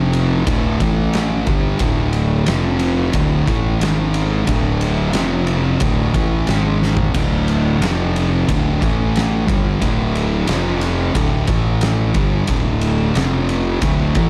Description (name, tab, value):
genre	stoner and doom metal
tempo	90 BPM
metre	4/4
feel	straight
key	unclear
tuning	A4 = 443 Hz
part	thick fuzz guitar	riff	0.0-14.3 s	D2 to A3	-22 LUFS	equal	distortion
part	thick fuzz guitar	riff	0.0-14.3 s	D2 to A3	-24 LUFS	equal	distortion
part	fuzz fingered electric bass	bass	0.0-14.3 s	D1 to A1	-24 LUFS	equal	overdrive
part	oversized low-tuned drum kit	drums	0.1-14.3 s	crash cymbal, kick drum, ride cymbal, snare drum, toms	-23 LUFS	equal	none
room	light reverb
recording	none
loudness	-17 LUFS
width	mono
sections	0.0-14.3 A section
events	drum fill 6.8-7.1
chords	0.5 D5; 0.8 A5; 1.5 D5; 2.5 F5; 3.1 D5; 3.8 G#5; 4.5 D5; 5.1 F5; 5.8 D5; 6.5 G#5; 7.1 D5; 7.8 F5; 8.5 D5; 8.8 A5; 9.5 D5; 10.5 F5; 11.2 D5; 11.5 A5; 12.2 D5; 13.2 F5